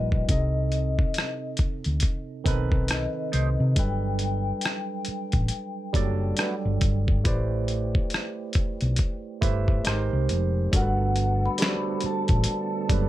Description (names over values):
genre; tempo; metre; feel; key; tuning
R&B, neo-soul; 69 BPM; 4/4; swing 61% on 16ths; G major; A4 = 443 Hz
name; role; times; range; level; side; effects
vibraphone with soft mallets; melody; 0.0-13.1 s; D#5 to B5; -33 LUFS; left 4 dB; plate reverb
barky tine electric piano; accompaniment; 0.0-13.1 s; C3 to E5; -30 LUFS; right 4 dB; overdrive, auto-pan, plate reverb
hollow-body short-scale fingered electric bass; bass; 0.0-13.1 s; F1 to C3; -25 LUFS; equal; none
dusty soul sampler-style drum kit; drums; 0.1-13.1 s; hi-hat, kick drum, rim click, snare drum; -25 LUFS; equal; overdrive
mellow electric guitar; second line; 2.9-6.5 s; A3 to C5; -34 LUFS; right 5 dB; wah, plate reverb
tonewheel organ; sustained chords; 10.7-13.1 s; D3 to A4; -36 LUFS; left 2 dB; chorus vibrato, slow rotary speaker, plate reverb
room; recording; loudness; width
light reverb; none; -23 LUFS; side -14 dB against mid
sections
0.0-10.7 A section; 10.7-13.1 B section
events
none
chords
0.3 Cm6; 3.8 Gmaj9; 7.2 Am11; 9.9 Abmaj9; 10.7 Gmaj9